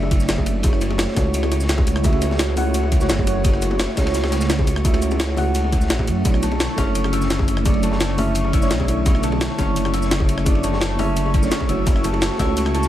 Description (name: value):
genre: liquid drum and bass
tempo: 171 BPM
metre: 4/4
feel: straight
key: B minor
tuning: A4 = 441 Hz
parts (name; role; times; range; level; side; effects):
- mellow FM electric piano; accompaniment; 0.0-12.9 s; D3 to F#5; -25 LUFS; right 2 dB; chorus, tremolo, dub echo
- airy breathy pad; sustained chords; 0.0-12.9 s; D3 to C#6; -28 LUFS; right 2 dB; chorus
- dark detuned saw bass; bass; 0.0-12.9 s; F#1 to F#2; -22 LUFS; equal; none
- bongos; percussion; 0.0-12.7 s; none; -32 LUFS; left 3 dB; analog delay
- crunchy breakbeat drum kit; drums; 0.1-12.9 s; ride cymbal, snare drum; -32 LUFS; equal; high-pass filter on cymbals, high-pass filter on snare, high-pass filter on room
- electronic kick drum; drums; 0.1-12.5 s; none; -20 LUFS; equal; none
- jungle sampler-style drum kit; drums; 0.1-12.9 s; hi-hat, rim click, shaker, snare drum; -26 LUFS; equal; analog delay
- concert harp; arpeggios; 6.4-12.9 s; A3 to A4; -26 LUFS; left 5 dB; dub echo
room: light reverb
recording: echo-heavy mix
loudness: -17 LUFS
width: side -12 dB against mid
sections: 0.0-12.9 A section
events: none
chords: 0.5 F#m7; 6.3 Bm11; 11.7 F#m7